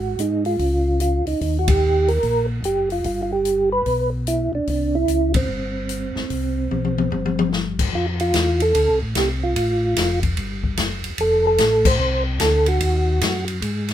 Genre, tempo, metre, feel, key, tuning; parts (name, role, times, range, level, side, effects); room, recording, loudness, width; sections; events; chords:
soul jazz organ trio; 148 BPM; 4/4; swing 65% on 8ths; F major from 7.9 s; A4 = 440 Hz
percussive tonewheel organ; melody; 0.0-13.4 s; C4 to C5; -20 LUFS; right 2 dB; chorus vibrato, slow rotary speaker
tonewheel organ; bass; 0.0-13.9 s; F1 to Ab2; -23 LUFS; left 1 dB; chorus vibrato
swinging big-band drum kit; drums; 0.2-13.9 s; crash cymbal, hi-hat, kick drum, ride cymbal, snare drum, toms; -24 LUFS; left 3 dB
little or no reverb; minimal, uncompressed stereo recording; -18 LUFS; side -11 dB against mid
0.0-7.9 A section; 7.9-13.9 B section
band accent 1.6, 5.3, 11.8; drum fill 6.7-7.5
0.0 Ebmadd11/Ab; 0.6 Db; 1.4 Eb; 3.0 G; 4.7 Cmaj7(no3); 7.9 F6; 9.6 Fadd9; 11.2 Dm7; 12.8 Ebm